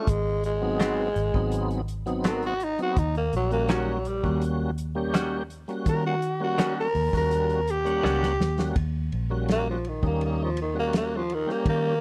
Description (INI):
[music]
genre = straight-eighth soul blues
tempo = 83 BPM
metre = 4/4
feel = straight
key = Eb mixolydian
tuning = A4 = 440 Hz
[part]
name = growling tenor saxophone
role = melody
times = 0.0-12.0 s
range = Eb3 to Bb4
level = -29 LUFS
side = equal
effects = slapback echo
[part]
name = tonewheel organ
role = accompaniment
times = 0.0-12.0 s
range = Gb3 to F#5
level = -33 LUFS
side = equal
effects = overdrive, chorus vibrato, slow rotary speaker
[part]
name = vintage muted fingered electric bass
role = bass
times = 0.1-12.0 s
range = Ab1 to Eb3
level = -31 LUFS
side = equal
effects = none
[part]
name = warm soul drum kit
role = drums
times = 0.1-11.8 s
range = hi-hat, kick drum, ride cymbal, snare drum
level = -29 LUFS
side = equal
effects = none
[part]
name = direct-recorded clean electric guitar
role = stabs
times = 0.8-8.3 s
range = Ab2 to F#4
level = -33 LUFS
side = equal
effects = none
[sound]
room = small room ambience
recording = dry, close 1970s-style studio recording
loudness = -26 LUFS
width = mono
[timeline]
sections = 0.0-8.8 A section; 8.8-12.0 A section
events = tenor saxophone solo 0.0-8.8, 8.8-12.0; drum fill 8.0-8.8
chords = 0.1 Ab7#9; 3.0 Eb7#9